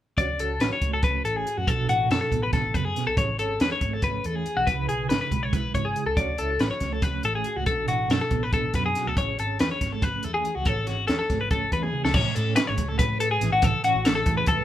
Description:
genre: math rock and midwest emo.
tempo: 281 BPM (eighths).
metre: 7/8.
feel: straight.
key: A major.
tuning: A4 = 440 Hz.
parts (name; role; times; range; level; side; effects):
mellow electric guitar; accompaniment; 0.2-14.6 s; A2 to C#5; -32 LUFS; right 5 dB; tremolo.
twelve-string electric guitar; arpeggios; 0.2-14.6 s; F#4 to D5; -25 LUFS; left 3 dB; none.
hollow-body short-scale picked electric bass; bass; 0.2-14.6 s; G#1 to A2; -30 LUFS; equal; none.
compact cocktail drum kit; drums; 0.2-14.6 s; crash cymbal, hi-hat, kick drum, snare drum, toms; -26 LUFS; equal; none.
room: moderate large studio reverb, RT60 0.8 s.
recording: band playing live in one room.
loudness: -22 LUFS.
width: side -12 dB against mid.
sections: 0.2-12.1 A section; 12.1-14.6 B section.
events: drum fill 11.8-12.1.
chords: 0.2 Dmaj7; 3.2 Amaj7; 4.7 C#m7; 6.2 Dmaj7; 7.7 Bm7; 9.2 Amaj9.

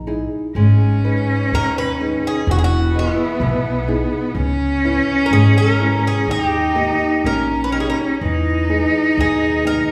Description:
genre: fado-style ballad.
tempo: 62 BPM.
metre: 2/4.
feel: rubato.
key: unclear.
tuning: A4 = 441 Hz.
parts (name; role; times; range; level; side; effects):
Irish bouzouki; melody; 0.0-9.9 s; E4 to B4; -24 LUFS; equal; none.
upright bass; bass; 0.0-9.8 s; E1 to E2; -21 LUFS; equal; none.
nylon-string guitar; accompaniment; 0.1-9.9 s; B2 to D#5; -25 LUFS; equal; none.
clear cello; second line; 0.6-9.9 s; B3 to D#4; -22 LUFS; equal; none.
room: wet recital hall reverb, RT60 1.5 s.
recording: recorded in a church or concert hall, small room ambience.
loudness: -17 LUFS.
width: mono.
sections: 0.0-9.9 A section.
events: none.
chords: 0.0 Emaj7; 0.6 G#m; 2.5 Emaj7; 4.4 C#m7; 6.3 D#; 8.2 Emaj7.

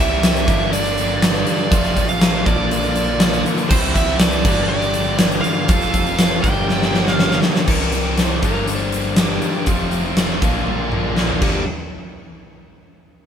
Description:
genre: classic rock.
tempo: 121 BPM.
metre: 4/4.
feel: straight.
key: G dorian.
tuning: A4 = 440 Hz.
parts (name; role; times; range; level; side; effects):
fuzz lead guitar; melody; 0.0-7.4 s; C5 to G5; -22 LUFS; right 4 dB; distortion.
tonewheel organ; sustained chords; 0.0-7.7 s; A3 to F5; -33 LUFS; equal; none.
distorted electric guitar; riff; 0.0-11.6 s; F2 to Bb4; -24 LUFS; left 8 dB; overdrive.
distorted electric guitar; riff; 0.0-11.6 s; F2 to Bb4; -24 LUFS; right 7 dB; overdrive.
growling fingered electric bass; bass; 0.0-11.7 s; F1 to C2; -25 LUFS; equal; overdrive.
huge arena drum kit; drums; 0.2-11.5 s; crash cymbal, hi-hat, kick drum, snare drum, toms; -18 LUFS; equal; none.
clean lap steel guitar; second line; 7.7-11.6 s; G4 to C5; -28 LUFS; left 2 dB; none.
room: light reverb.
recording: band playing live in one room.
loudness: -15 LUFS.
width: side -8 dB against mid.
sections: 0.0-7.7 A section; 7.7-11.7 B section; 11.7-13.3 C section.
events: drum fill 6.7-7.7, 10.7-11.7.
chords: 0.5 Gm; 1.7 Fadd9; 2.5 Bb; 3.7 C; 4.5 Gm; 5.7 Fadd9; 6.4 Gm; 7.7 C; 8.4 Gm; 9.7 Fadd9; 10.4 Bb; 11.4 Gm; 11.7 N.C..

